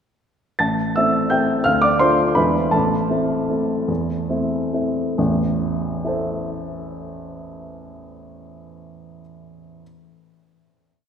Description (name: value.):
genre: classical, piano waltz.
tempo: 131-180 BPM.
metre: 3/4.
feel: rubato.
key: A minor.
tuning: A4 = 439 Hz.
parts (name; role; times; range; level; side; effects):
warm baby grand piano; solo; 0.6-9.8 s; A1 to A6; -18 LUFS; equal; none.
room: wet church reverb, RT60 3.5 s.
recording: recorded in a church or concert hall.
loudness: -18 LUFS.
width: side -7 dB against mid.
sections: 0.6-5.2 A section; 5.2-7.7 final chord.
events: slowing down 2.2-5.2.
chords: 0.6 Am; 1.7 Dm; 2.4 E7; 2.7 Am.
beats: | 0.60 0.96 1.31 | 1.66 2.00 2.37 | 2.73 3.10 3.50 | 3.89 4.29 4.73 | 5.18 5.61 6.04 | 6.47 6.89 7.32.